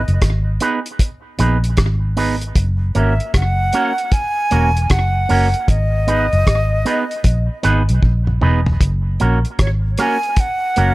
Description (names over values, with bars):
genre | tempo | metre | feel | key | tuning
roots reggae | 77 BPM | 4/4 | swing 64% on 16ths | G# minor | A4 = 440 Hz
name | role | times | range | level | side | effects
breathy bright silver concert flute | melody | 0.0-10.9 s | C#5 to G#5 | -20 LUFS | equal | tape echo
vintage muted fingered electric bass | bass | 0.0-10.9 s | E1 to B1 | -16 LUFS | equal | none
cloth-damped thuddy drum kit | drums | 0.1-10.9 s | hi-hat, kick drum, rim click, toms | -18 LUFS | equal | none
electric guitar with an envelope filter | accompaniment | 0.6-10.9 s | A#3 to B4 | -21 LUFS | right 3 dB | tape echo
room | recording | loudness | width
light reverb | none | -14 LUFS | side -19 dB against mid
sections
0.0-10.9 A section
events
drum fill 8.0-8.8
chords
0.0 G#m; 2.6 F#; 5.7 G#m; 8.8 F#